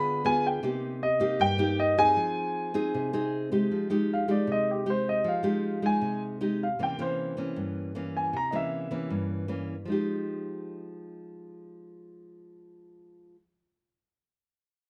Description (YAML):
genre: bossa nova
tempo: 156 BPM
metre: 4/4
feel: straight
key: F minor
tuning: A4 = 440 Hz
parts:
  - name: warm concert grand piano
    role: melody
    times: 0.0-9.1 s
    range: G4 to B5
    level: -30 LUFS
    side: equal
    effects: none
  - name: nylon-string guitar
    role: accompaniment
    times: 0.0-13.4 s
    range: G2 to Ab4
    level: -32 LUFS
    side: equal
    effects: none
room: moderate large studio reverb, RT60 1.1 s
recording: none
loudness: -28 LUFS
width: mono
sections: 0.0-3.7 A section; 3.7-9.9 B section; 9.9-13.0 C section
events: grand piano solo 3.7-9.9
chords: 0.0 G7b9; 0.6 Cm7; 2.2 Fm9; 6.8 C7b9; 9.9 Fm9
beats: 0.25 | 0.63 1.02 1.40 1.79 | 2.17 2.56 2.94 3.33 | 3.71 4.09 4.48 4.86 | 5.25 5.63 6.02 6.40 | 6.79 7.17 7.56 7.95 | 8.33 8.72 9.10 9.49 | 9.87 10.26 10.64 11.03 | 11.41 11.80 12.19 12.57